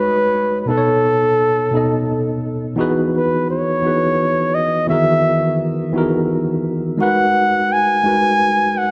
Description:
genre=R&B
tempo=57 BPM (dotted quarters)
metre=6/8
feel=straight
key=unclear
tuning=A4 = 440 Hz
part: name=warm flugelhorn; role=melody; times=0.0-8.9 s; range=A4 to G#5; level=-19 LUFS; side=equal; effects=tape echo
part: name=tine electric piano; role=accompaniment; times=0.0-8.9 s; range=B2 to D#5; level=-21 LUFS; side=equal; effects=overdrive
room=moderate echo chamber reverb, RT60 2.3 s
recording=echo-heavy mix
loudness=-17 LUFS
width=mono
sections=0.0-8.9 A section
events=none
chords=0.0 G#m7; 0.7 B7; 2.8 Emaj9#11; 7.0 G#m7

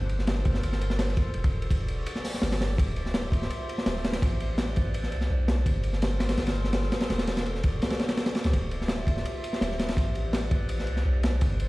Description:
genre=drum and bass, jungle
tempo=167 BPM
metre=4/4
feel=straight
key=D minor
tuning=A4 = 440 Hz
part: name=warbly tape-like pad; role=sustained chords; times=0.0-11.7 s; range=F4 to E5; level=-37 LUFS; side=equal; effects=chorus, built-in reverb
part: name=long sustained 808-style bass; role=bass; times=0.0-11.7 s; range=D1 to C#2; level=-28 LUFS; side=equal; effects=none
part: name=crunchy breakbeat drum kit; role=drums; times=0.1-11.7 s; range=hi-hat, kick drum, ride cymbal, snare drum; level=-27 LUFS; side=equal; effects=none
room=little or no reverb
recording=played on a big sound system in a bare room, stone room reverb, vinyl crackle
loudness=-25 LUFS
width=side -20 dB against mid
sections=0.0-11.7 A section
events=none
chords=0.0 Gm11; 1.4 Em11; 2.8 Dm11; 4.2 Am11; 5.7 Gm11; 7.1 Em11; 8.5 Dm11; 10.0 Am11

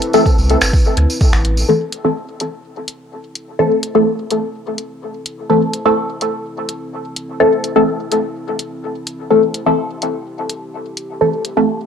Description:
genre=dub techno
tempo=126 BPM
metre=4/4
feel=straight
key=A minor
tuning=A4 = 440 Hz
part: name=dark analog pad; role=sustained chords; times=0.0-11.9 s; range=C4 to B4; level=-30 LUFS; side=equal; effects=chorus, sidechain pumping, cassette tape
part: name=deep house drum kit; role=drums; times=0.0-11.5 s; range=finger snaps, hi-hat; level=-21 LUFS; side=equal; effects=cassette tape, dub echo
part: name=filtered dub chord stab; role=stabs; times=0.1-11.6 s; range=E3 to A4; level=-15 LUFS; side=left 1 dB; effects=phaser, sidechain pumping, cassette tape, dub echo
part: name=tambourine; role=percussion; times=0.1-1.7 s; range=none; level=-25 LUFS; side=right 2 dB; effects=none
part: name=electronic kick drum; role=drums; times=0.3-1.3 s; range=none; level=-13 LUFS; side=equal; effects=cassette tape
part: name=warm sub bass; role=bass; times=0.4-1.6 s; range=G1 to D2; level=-15 LUFS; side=equal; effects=sidechain pumping
room=moderate spring reverb, RT60 1.3 s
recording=home recording on cassette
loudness=-14 LUFS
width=side -7 dB against mid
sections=0.0-1.7 A section; 1.7-11.9 B section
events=filter sweep on analog synth pad 1.7-11.9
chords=0.0 Am

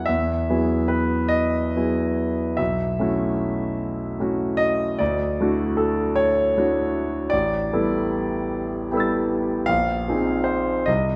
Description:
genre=classical, impressionist solo piano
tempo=47-52 BPM (dotted quarters)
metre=6/8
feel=rubato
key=unclear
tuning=A4 = 439 Hz
part: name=clear concert grand piano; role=solo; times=0.0-11.2 s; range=A1 to A6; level=-22 LUFS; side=equal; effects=none
room=moderate concert hall reverb, RT60 2.1 s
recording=none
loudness=-23 LUFS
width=mono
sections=0.1-11.2 A section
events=none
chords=0.1 Emaj9; 2.6 B11; 5.0 Dmaj9; 7.3 A11; 9.7 Bb9sus4

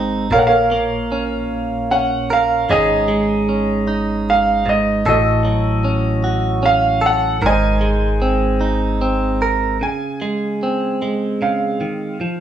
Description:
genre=acoustic folk-pop ballad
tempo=76 BPM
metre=3/4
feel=straight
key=Db major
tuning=A4 = 439 Hz
part: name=direct-recorded clean electric guitar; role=accompaniment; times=0.0-12.4 s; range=Ab2 to Bb4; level=-18 LUFS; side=right 2 dB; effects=none
part: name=upright bass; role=bass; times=0.0-9.8 s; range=Ab1 to Bb1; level=-23 LUFS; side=left 1 dB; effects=none
part: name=clear grand piano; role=melody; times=0.3-12.4 s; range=Gb4 to Ab5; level=-18 LUFS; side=right 1 dB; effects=none
room=moderate large studio reverb, RT60 0.8 s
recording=band playing live in one room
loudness=-15 LUFS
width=side -10 dB against mid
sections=0.0-9.8 A section; 9.8-12.4 B section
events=none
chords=0.3 Bbm; 2.7 Absus4; 5.1 Gbm/A; 7.4 Abadd9; 9.8 Dbmaj7

